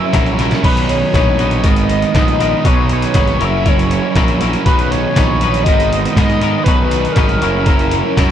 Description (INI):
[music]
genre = indie rock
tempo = 119 BPM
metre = 4/4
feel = straight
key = B major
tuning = A4 = 440 Hz
[part]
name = overdriven synth lead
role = melody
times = 0.0-8.1 s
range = A#4 to E5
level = -19 LUFS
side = left 2 dB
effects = distortion, chorus, phaser, plate reverb, analog delay
[part]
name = crunchy overdriven guitar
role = riff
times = 0.0-8.3 s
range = G#2 to B4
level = -18 LUFS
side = right 8 dB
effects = lush chorus
[part]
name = twangy electric guitar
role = riff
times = 0.0-8.3 s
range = F#3 to B4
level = -21 LUFS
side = left 11 dB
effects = none
[part]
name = fuzz picked electric bass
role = bass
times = 0.1-8.3 s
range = F#1 to G#2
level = -19 LUFS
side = equal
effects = overdrive
[part]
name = trip hop sampler-style drum kit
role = drums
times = 0.1-8.3 s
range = crash cymbal, hi-hat, kick drum, snare drum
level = -16 LUFS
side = equal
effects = none
[sound]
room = light reverb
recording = none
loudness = -11 LUFS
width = side -10 dB against mid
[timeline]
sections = 0.0-8.3 A section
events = drum fill 0.4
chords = 0.0 F#7; 0.6 Badd9; 1.6 G#madd9; 2.7 Badd9; 3.4 F#7; 4.7 Badd9; 5.7 G#madd9; 6.7 Badd9; 7.4 F#7